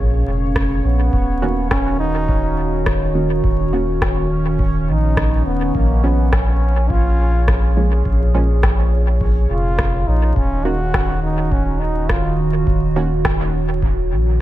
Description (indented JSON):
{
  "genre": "ambient dub",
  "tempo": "104 BPM",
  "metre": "4/4",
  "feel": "straight",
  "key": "Eb minor",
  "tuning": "A4 = 439 Hz",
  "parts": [
    { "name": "warbly tape-like pad", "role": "sustained chords", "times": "0.0-14.4 s", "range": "Bb2 to F5", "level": "-23 LUFS", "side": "right 2 dB", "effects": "chorus, built-in reverb" },
    { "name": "soft dub sub bass", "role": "bass", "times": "0.0-14.4 s", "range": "Eb1 to Bb1", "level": "-18 LUFS", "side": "equal", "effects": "none" },
    { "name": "bubbling stepped-filter texture", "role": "texture", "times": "0.0-14.4 s", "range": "Db4 to Db5", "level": "-30 LUFS", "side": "equal", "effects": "chorus, built-in reverb" },
    { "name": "electronic kick drum", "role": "drums", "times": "0.6-13.9 s", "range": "none", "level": "-21 LUFS", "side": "equal", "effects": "none" },
    { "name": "electronic rim click and woodblock", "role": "drums", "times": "0.6-13.4 s", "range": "none", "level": "-26 LUFS", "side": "equal", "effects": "dub echo" },
    { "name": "clear trombone", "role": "melody", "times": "0.8-12.4 s", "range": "Bb3 to Gb4", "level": "-26 LUFS", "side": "right 1 dB", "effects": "dub echo" },
    { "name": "filtered dub chord stab", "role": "stabs", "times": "1.4-13.1 s", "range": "Bb2 to Gb4", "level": "-27 LUFS", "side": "right 3 dB", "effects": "chorus, dub echo" }
  ],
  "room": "little or no reverb",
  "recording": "dark, warm production, vinyl crackle",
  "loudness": "-15 LUFS",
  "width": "side -14 dB against mid",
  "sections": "0.0-14.4 A section",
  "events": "none",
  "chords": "0.0 Bbm7; 1.1 Ebm7; 5.7 Bbm7; 10.4 Ebm7"
}